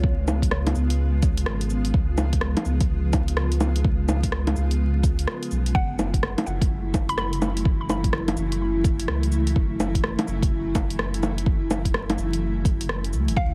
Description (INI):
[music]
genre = future garage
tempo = 126 BPM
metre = 4/4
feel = swing 63% on 16ths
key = F# minor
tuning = A4 = 441 Hz
[part]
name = mallet-like synth pluck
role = melody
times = 0.0-0.5, 5.7-7.3, 13.4-13.5 s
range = C#5 to B5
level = -35 LUFS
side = equal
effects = chorus, phaser, analog delay
[part]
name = granular cloud pad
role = sustained chords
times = 0.0-13.5 s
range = C#3 to E#4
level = -32 LUFS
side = equal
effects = built-in reverb, vintage 12-bit sampler grit, sidechain pumping
[part]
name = warm sub bass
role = bass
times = 0.0-13.5 s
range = F#1 to C#2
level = -27 LUFS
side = equal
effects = sidechain pumping
[part]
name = electronic kick drum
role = drums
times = 0.0-13.5 s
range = none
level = -25 LUFS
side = equal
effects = none
[part]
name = deep house drum kit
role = drums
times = 0.3-13.4 s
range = bongos, cabasa, hi-hat, rim click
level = -29 LUFS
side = equal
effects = soft clipping on snare
[sound]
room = light reverb, digital ambience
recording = dense, heavily limited modern master, vinyl crackle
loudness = -23 LUFS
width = mono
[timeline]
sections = 0.0-13.5 A section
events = none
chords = 0.0 C#7; 5.7 F#m7